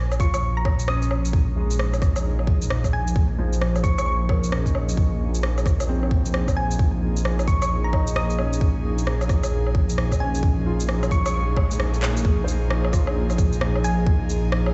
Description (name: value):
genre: future garage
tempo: 132 BPM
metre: 4/4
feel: swing 62% on 16ths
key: Bb minor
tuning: A4 = 440 Hz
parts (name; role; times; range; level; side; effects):
- felt-muted upright piano; accompaniment; 0.0-14.7 s; F3 to C5; -36 LUFS; equal; sidechain pumping, dub echo
- swelling detuned saw bass; bass; 0.0-14.7 s; Bb1; -26 LUFS; equal; sidechain pumping
- electronic shaker, woodblock, rim click and handclaps; drums; 0.1-14.7 s; none; -32 LUFS; equal; none
- thumb-piano-like synth pluck; melody; 0.2-14.1 s; Ab5 to Eb6; -34 LUFS; equal; chorus, dub echo
- electronic kick drum; drums; 0.2-14.2 s; none; -22 LUFS; equal; none
- airy breathy pad; sustained chords; 1.7-14.7 s; F3 to Ab4; -33 LUFS; equal; chorus, sidechain pumping
- riser; sound effects; 10.5-12.3 s; none; -39 LUFS; equal; none
room: digital ambience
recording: played on a big sound system in a bare room, large studio reverb, nothing above 7.9 kHz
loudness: -22 LUFS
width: mono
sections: 0.0-12.3 A section; 12.3-14.7 B section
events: kick drops out 11.8-12.3; drum fill 12.0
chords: 0.0 Bbm7; 12.3 Bb7(no3)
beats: 0.43 0.89 | 1.34 1.80 2.25 2.71 | 3.16 3.61 4.07 4.52 | 4.98 5.43 5.89 6.34 | 6.80 7.25 7.71 8.16 | 8.61 9.07 9.52 9.98 | 10.43 10.89 11.34 11.80 | 12.25 12.71 13.16 13.61 | 14.07 14.52